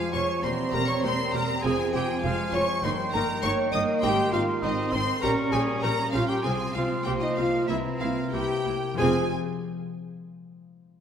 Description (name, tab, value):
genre	cinematic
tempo	91-101 BPM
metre	4/4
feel	straight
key	F minor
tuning	A4 = 436 Hz
part	rich studio violin section	melody	0.0-9.3 s	Eb5 to Eb6	-33 LUFS	left 3 dB	none
part	clear clarinet	second line	0.0-9.3 s	G5 to Db6	-36 LUFS	left 1 dB	none
part	clear studio violin section	second line	0.0-9.3 s	Eb5 to Eb6	-38 LUFS	left 3 dB	none
part	small flute group	second line	0.0-9.3 s	Eb5 to Eb6	-36 LUFS	right 3 dB	none
part	warm bassoon	accompaniment	0.0-9.3 s	Eb3 to G3	-35 LUFS	right 1 dB	none
part	dark French horn section	sustained chords	0.0-9.3 s	Eb4 to Eb5	-30 LUFS	left 1 dB	none
part	concert harp	arpeggios	0.0-9.3 s	E2 to F5	-35 LUFS	left 8 dB	none
part	rich studio cello section	bass	0.0-9.3 s	F2 to E4	-32 LUFS	right 4 dB	none
part	mellow cor anglais	second line	0.1-9.3 s	Eb4 to Eb5	-35 LUFS	right 2 dB	none
part	rich studio viola section	accompaniment	0.1-9.3 s	Ab3 to G4	-35 LUFS	right 1 dB	none
part	rich studio double bass section	bass	0.1-9.3 s	E1 to C2	-33 LUFS	right 4 dB	none
room	wet scoring stage reverb, RT60 1.8 s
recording	none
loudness	-23 LUFS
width	side -8 dB against mid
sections	0.0-9.0 A section; 9.0-11.0 B section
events	none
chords	0.4 C7/E; 1.6 Fm; 2.8 Eb/G; 4.0 Ab; 5.2 Gdim/Bb; 6.4 Fm/C; 7.7 C7; 9.0 Fm